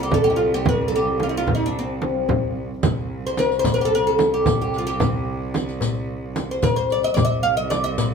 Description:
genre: Arabic maqam ensemble.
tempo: 111 BPM.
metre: 4/4.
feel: straight.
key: C maqam rast.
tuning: A4 = 440 Hz.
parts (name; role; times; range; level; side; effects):
oud; melody; 0.0-8.1 s; C4 to F5; -21 LUFS; left 1 dB; none.
clear cello; drone; 0.0-8.1 s; C2; -28 LUFS; right 3 dB; none.
darbuka; percussion; 0.1-8.1 s; none; -27 LUFS; left 3 dB; none.
frame drum; percussion; 0.1-7.8 s; none; -24 LUFS; right 3 dB; none.
riq; percussion; 2.8-8.1 s; none; -32 LUFS; left 5 dB; none.
room: moderate studio reverb, RT60 0.7 s.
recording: band playing live in one room.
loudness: -19 LUFS.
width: side -6 dB against mid.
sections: 0.0-8.1 A section.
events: none.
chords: none.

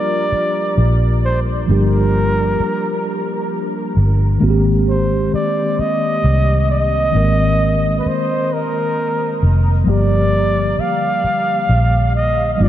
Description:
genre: R&B.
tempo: 44 BPM (dotted quarters).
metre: 6/8.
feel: straight.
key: G phrygian.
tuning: A4 = 442 Hz.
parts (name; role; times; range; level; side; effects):
breathy flugelhorn; melody; 0.0-12.7 s; Bb4 to F5; -19 LUFS; equal; tape echo.
mellow tine electric piano; accompaniment; 0.0-12.7 s; D3 to Bb4; -19 LUFS; equal; medium stereo tremolo.
vintage muted fingered electric bass; bass; 0.3-12.7 s; F1 to C2; -15 LUFS; equal; none.
room: moderate huge ambient reverb, RT60 7.3 s.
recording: dreamy mix soaked in reverb.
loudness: -14 LUFS.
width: side -12 dB against mid.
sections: 0.0-12.7 A section.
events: none.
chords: 0.0 Gm7; 4.4 Abmaj9; 9.9 Gm7.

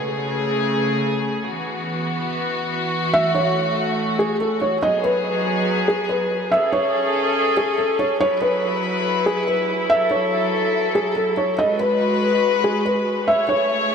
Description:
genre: hip hop.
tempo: 142 BPM.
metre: 4/4.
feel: half-time.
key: G# phrygian.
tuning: A4 = 440 Hz.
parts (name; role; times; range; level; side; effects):
warm chamber string section; sustained chords; 0.0-13.9 s; C#3 to C#5; -21 LUFS; left 1 dB; none.
felt-muted upright piano; melody; 3.1-13.9 s; G#4 to E5; -20 LUFS; equal; analog delay.
room: wet huge ambient reverb, RT60 4.3 s.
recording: dreamy mix soaked in reverb.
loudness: -18 LUFS.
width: side -6 dB against mid.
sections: 0.0-4.8 A section; 4.8-13.9 B section.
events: break 0.0-3.1.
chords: 0.0 Amaj7; 1.4 Esus2; 3.1 F#m7; 4.8 G#m7; 6.5 Amaj7; 8.2 Esus2; 9.9 F#m7; 11.6 G#m7; 13.3 Amaj7.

